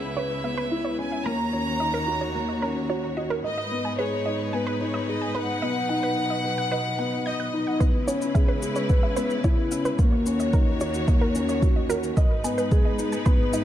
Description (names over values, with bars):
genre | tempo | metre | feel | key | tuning
piano and strings electronica | 110 BPM | 4/4 | straight | C# dorian | A4 = 440 Hz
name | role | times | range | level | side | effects
bright chamber violin section | melody | 0.0-7.8 s | B4 to A#5 | -30 LUFS | equal | tape echo
clear studio string section | sustained chords | 0.0-13.6 s | C#2 to C#5 | -31 LUFS | equal | sidechain pumping
felt-muted upright piano | riff | 0.0-13.6 s | A#3 to D#5 | -27 LUFS | left 2 dB | tape echo
analog pluck | arpeggios | 0.2-13.6 s | A#4 to G6 | -33 LUFS | right 3 dB | chorus, sidechain pumping, tape echo
electronic kick drum | drums | 7.8-13.4 s | none | -21 LUFS | equal | none
shaker | drums | 7.8-13.6 s | none | -38 LUFS | left 4 dB | none
room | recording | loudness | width
moderate recital hall reverb, RT60 1.7 s, small room ambience | none | -22 LUFS | side -12 dB against mid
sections
0.0-7.8 A section; 7.8-13.6 B section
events
build-up 7.8-13.6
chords
0.0 C#m7; 1.3 D#m7; 3.4 G#m; 5.6 B; 7.8 C#m7; 10.0 D#m7; 12.2 G#m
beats
0.17 0.72 | 1.26 1.81 2.35 2.90 | 3.44 3.99 4.54 5.08 | 5.63 6.17 6.72 7.26 | 7.81 8.35 8.90 9.44 | 9.99 10.54 11.08 11.63 | 12.17 12.72 13.26